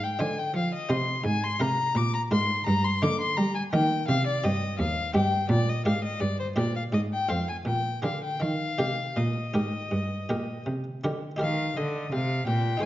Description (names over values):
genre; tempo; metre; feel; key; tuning
classical, baroque-style sonata movement with continuo; 82 BPM; 4/4; uneven beats, rubato; Eb major; A4 = 440 Hz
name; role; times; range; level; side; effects
clear violin; melody; 0.0-12.9 s; C5 to D6; -29 LUFS; left 3 dB; none
buff-stop harpsichord; accompaniment; 0.0-12.9 s; Eb2 to C5; -31 LUFS; equal; none
rich cello; bass; 0.0-12.9 s; Eb2 to G3; -28 LUFS; right 1 dB; none
room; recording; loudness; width
wet recital hall reverb, RT60 1.5 s; nothing above 7.6 kHz; -24 LUFS; side -14 dB against mid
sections
0.0-11.4 A section; 11.4-12.9 B section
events
none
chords
0.0 Fm7/Ab; 1.2 Bb7/Ab; 2.7 Eb/G; 4.1 Cm; 5.5 Gm; 6.9 Fm/Ab; 7.7 Bb7; 8.4 Eb